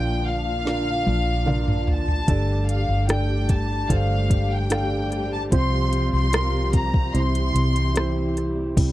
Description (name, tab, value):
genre	pop ballad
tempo	74 BPM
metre	4/4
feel	straight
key	unclear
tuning	A4 = 440 Hz
part	dark studio violin section	melody	0.0-8.4 s	F5 to C6	-28 LUFS	left 2 dB	slapback echo
part	dark upright piano	accompaniment	0.0-8.9 s	G2 to F5	-27 LUFS	right 3 dB	none
part	dark studio string section	sustained chords	0.0-8.9 s	A2 to G4	-30 LUFS	left 2 dB	none
part	vintage muted fingered electric bass	bass	0.0-8.9 s	G1 to C2	-23 LUFS	equal	none
part	smooth R&B drum kit	drums	0.7-8.9 s	crash cymbal, hi-hat, kick drum, rim click, snare drum, toms	-22 LUFS	equal	none
room	little or no reverb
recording	dry, close 1970s-style studio recording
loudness	-20 LUFS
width	side -15 dB against mid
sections	0.0-8.8 A section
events	drum fill 0.7-2.3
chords	0.0 Bb; 2.3 Gsus2; 5.5 Csus4; 7.1 C